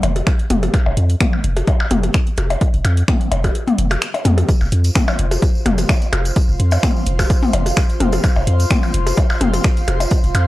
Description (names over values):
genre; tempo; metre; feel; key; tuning
minimal techno; 128 BPM; 4/4; swing 54% on 16ths; unclear; A4 = 440 Hz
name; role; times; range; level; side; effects
punchy sub bass; bass; 0.0-10.5 s; F1 to F2; -17 LUFS; equal; sidechain pumping
garage drum kit; drums; 0.0-10.4 s; finger snaps, hi-hat; -25 LUFS; equal; overdrive
electronic percussion blips and toms; percussion; 0.0-10.4 s; none; -20 LUFS; left 2 dB; analog delay
electronic kick drum; drums; 0.3-10.2 s; none; -16 LUFS; equal; overdrive
tambourine; percussion; 4.5-10.3 s; none; -31 LUFS; right 2 dB; none
airy breathy pad; texture; 4.5-10.5 s; F4 to C6; -26 LUFS; equal; chorus, phaser, sidechain pumping
room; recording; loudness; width
little or no reverb; dry, gritty hardware recording, transformer saturation; -14 LUFS; side -17 dB against mid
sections
0.0-10.5 A section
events
kick drops out 3.5-4.5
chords
0.0 F5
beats
0.27 | 0.74 1.21 1.68 2.14 | 2.61 3.08 3.55 4.02 | 4.49 4.96 5.42 5.89 | 6.36 6.83 7.30 7.77 | 8.24 8.71 9.18 9.64 | 10.11